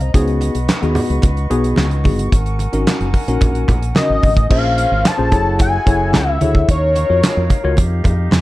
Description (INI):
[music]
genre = early-eighties boogie funk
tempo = 110 BPM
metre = 4/4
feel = straight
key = Bb minor from 4.5 s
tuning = A4 = 438 Hz
[part]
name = tine electric piano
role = accompaniment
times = 0.0-8.4 s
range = Cb4 to Ab5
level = -21 LUFS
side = left 2 dB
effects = medium stereo tremolo
[part]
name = bright small flute group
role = sustained chords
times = 0.0-8.4 s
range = Db4 to Db6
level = -28 LUFS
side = equal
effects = none
[part]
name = fingered electric bass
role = bass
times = 0.0-8.4 s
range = Gb1 to F2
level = -18 LUFS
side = equal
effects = none
[part]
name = damped 70s drum kit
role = drums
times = 0.0-8.4 s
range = crash cymbal, handclaps, hi-hat, kick drum, snare drum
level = -16 LUFS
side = equal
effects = none
[part]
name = congas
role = percussion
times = 0.4-8.4 s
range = none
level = -24 LUFS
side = right 2 dB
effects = none
[part]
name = fat analog lead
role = melody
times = 4.0-7.7 s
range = Db5 to A5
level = -18 LUFS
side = left 2 dB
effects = slapback echo
[sound]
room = light reverb, studio reverb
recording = dark, warm production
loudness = -13 LUFS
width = side -17 dB against mid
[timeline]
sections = 0.0-4.5 A section; 4.5-8.4 B section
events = tine electric piano fill 8.1-8.4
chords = 0.1 Db9sus4; 2.3 Ab9sus4; 4.5 Bbm9; 5.3 Gbm9; 6.7 Ebm9; 7.8 Fsus2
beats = | 0.14 0.69 1.23 1.78 | 2.32 2.87 3.41 3.96 | 4.50 5.05 5.60 6.14 | 6.69 7.23 7.78 8.32